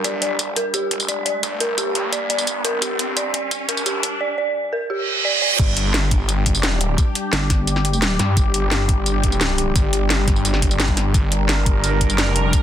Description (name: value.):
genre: dark technical drum and bass.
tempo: 173 BPM.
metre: 4/4.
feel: straight.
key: G minor.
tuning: A4 = 440 Hz.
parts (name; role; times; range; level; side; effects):
sweeping resonant pad; sustained chords; 0.0-12.6 s; G3 to Bb4; -26 LUFS; left 1 dB; chorus, sidechain pumping.
dark detuned synth bell; arpeggios; 0.0-5.5 s; G4 to D5; -23 LUFS; right 1 dB; chorus, sidechain pumping, low-pass filter, ping-pong delay.
snarling distorted saw bass; bass; 0.0-12.5 s; F1 to G2; -22 LUFS; equal; distortion, overdrive, high-pass filter.
drum and bass drum kit; drums; 0.0-12.6 s; crash cymbal, hi-hat, snare drum, tambourine; -22 LUFS; equal; none.
electronic kick drum; drums; 0.0-12.6 s; none; -20 LUFS; equal; high-pass filter on kick, high-pass filter on room.
riser and reverse cymbal; sound effects; 0.6-5.6 s; none; -25 LUFS; right 3 dB; none.
pulsing pluck wobble bass; bass; 7.3-8.2 s; G1; -20 LUFS; equal; chorus.
room: light reverb.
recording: dense, heavily limited modern master, high-pass filter.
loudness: -17 LUFS.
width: side -10 dB against mid.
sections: 0.0-5.6 A section; 5.6-12.6 B section.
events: build-up 0.0-5.6; riser 0.6-4.2; filter sweep on analog synth pad 0.0-5.6; drum fill 0.0-4.2; reverse cymbal 5.0-5.6; drop 5.6-12.6.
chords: 0.0 G5.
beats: | 0.04 0.39 0.74 1.08 | 1.43 1.78 2.13 2.47 | 2.82 3.17 3.51 3.86 | 4.21 4.55 4.90 5.25 | 5.59 5.94 6.29 6.63 | 6.98 7.33 7.67 8.02 | 8.37 8.71 9.06 9.41 | 9.76 10.10 10.45 10.80 | 11.14 11.49 11.84 12.18 | 12.53.